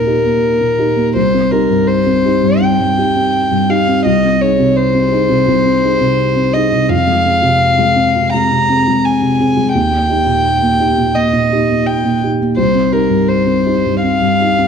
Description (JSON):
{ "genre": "neoclassical piano and strings", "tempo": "84 BPM", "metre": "4/4", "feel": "rubato", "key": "unclear", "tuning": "A4 = 440 Hz", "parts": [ { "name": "warm violin", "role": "melody", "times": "0.0-14.7 s", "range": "Bb4 to Bb5", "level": "-14 LUFS", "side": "left 1 dB", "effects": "none" }, { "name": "felt-muted upright piano", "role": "accompaniment", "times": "0.0-14.7 s", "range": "C2 to Ab4", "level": "-13 LUFS", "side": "equal", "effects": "none" } ], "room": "moderate recital hall reverb, RT60 1.6 s", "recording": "dark, warm production", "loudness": "-11 LUFS", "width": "side -6 dB against mid", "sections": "0.0-14.7 A section", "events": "none", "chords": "0.0 Eb; 1.2 Cm; 4.1 Ab/C; 6.9 Fm; 9.7 Eb; 12.6 Cm", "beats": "0.43 | 1.15 1.87 2.61 3.34 | 4.05 4.76 5.47 6.19 | 6.89 7.60 8.33 9.04 | 9.74 10.45 11.15 11.87 | 12.57 13.29 14.04" }